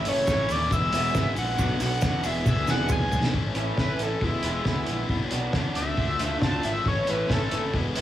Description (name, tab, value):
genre	indie rock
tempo	136 BPM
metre	4/4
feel	straight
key	A major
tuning	A4 = 440 Hz
part	overdriven synth lead	melody	0.0-7.7 s	E4 to A5	-29 LUFS	equal	distortion
part	cranked stack guitar	riff	0.0-8.0 s	A2 to G#4	-30 LUFS	left 6 dB	overdrive
part	raw garage guitar	riff	0.0-8.0 s	D3 to G#4	-34 LUFS	right 7 dB	overdrive, lush chorus, tape echo
part	fuzz fingered electric bass	bass	0.0-8.0 s	E1 to E2	-29 LUFS	equal	overdrive
part	cloth-damped thuddy drum kit	drums	0.1-8.0 s	hi-hat, kick drum, snare drum, toms	-28 LUFS	equal	none
part	egg shaker	percussion	0.1-3.2 s	none	-43 LUFS	right 9 dB	none
room	light reverb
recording	small room ambience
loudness	-23 LUFS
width	side -12 dB against mid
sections	0.0-3.3 A section; 3.3-8.0 B section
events	drum fill 2.5-3.3; analog synth lead solo 3.3-8.0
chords	0.0 A; 0.7 E; 1.6 Bm; 2.2 E7; 3.3 A; 4.2 E; 5.1 Bm; 5.8 Dm; 6.9 A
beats	0.27 0.71 1.15 | 1.58 2.02 2.46 2.90 | 3.34 3.78 4.22 4.66 | 5.10 5.54 5.98 6.42 | 6.86 7.30 7.74